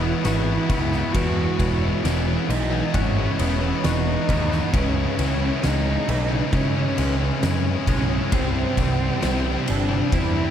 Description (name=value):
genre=post-rock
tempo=67 BPM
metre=4/4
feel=straight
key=unclear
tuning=A4 = 437 Hz
part: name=dark cello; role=melody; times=0.0-10.5 s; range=C4 to F#4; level=-27 LUFS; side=left 1 dB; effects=tape echo
part: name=twangy electric guitar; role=arpeggios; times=0.0-10.5 s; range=C3 to F#4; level=-33 LUFS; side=left 3 dB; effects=ensemble chorus, tape echo
part: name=vibraphone with hard mallets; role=arpeggios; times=0.0-10.5 s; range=B4 to D5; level=-37 LUFS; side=right 4 dB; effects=tape echo
part: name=distorted electric guitar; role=riff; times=0.0-10.5 s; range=C3 to E4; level=-29 LUFS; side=left 9 dB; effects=overdrive
part: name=sludgy distorted guitar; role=riff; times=0.0-10.5 s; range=C3 to E4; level=-27 LUFS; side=right 9 dB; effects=overdrive
part: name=growling picked electric bass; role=bass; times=0.0-10.4 s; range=E1 to C#3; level=-24 LUFS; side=equal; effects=overdrive
part: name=oversized low-tuned drum kit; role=drums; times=0.2-10.3 s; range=kick drum, ride cymbal, snare drum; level=-26 LUFS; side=equal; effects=none
room=moderate huge ambient reverb, RT60 7.8 s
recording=dreamy mix soaked in reverb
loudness=-19 LUFS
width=side -9 dB against mid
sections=0.0-10.5 A section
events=none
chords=0.0 Eadd9; 4.7 C#madd9; 8.3 Cadd9